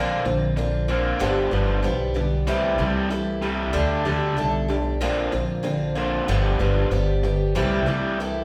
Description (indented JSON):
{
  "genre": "folk rock and heartland rock",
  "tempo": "95 BPM",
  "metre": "4/4",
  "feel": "straight",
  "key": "unclear",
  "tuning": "A4 = 441 Hz",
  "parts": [
    { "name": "picked twelve-string acoustic guitar", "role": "accompaniment", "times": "0.0-8.4 s", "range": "G2 to G4", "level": "-27 LUFS", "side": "equal", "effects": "none" },
    { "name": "raw garage guitar", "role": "riff", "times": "0.0-8.4 s", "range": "G2 to D4", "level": "-29 LUFS", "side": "equal", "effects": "overdrive" },
    { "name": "upright bass", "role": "bass", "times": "0.0-8.4 s", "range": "G1 to D2", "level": "-27 LUFS", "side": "equal", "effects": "none" }
  ],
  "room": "wet large studio reverb, RT60 1.3 s",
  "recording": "band playing live in one room",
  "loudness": "-23 LUFS",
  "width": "mono",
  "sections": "0.0-8.4 A section",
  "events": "none",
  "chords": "0.0 Bbadd9; 1.2 G7; 2.5 C6; 3.7 Dsus4; 5.0 Bbadd9; 6.3 G7; 7.6 C6"
}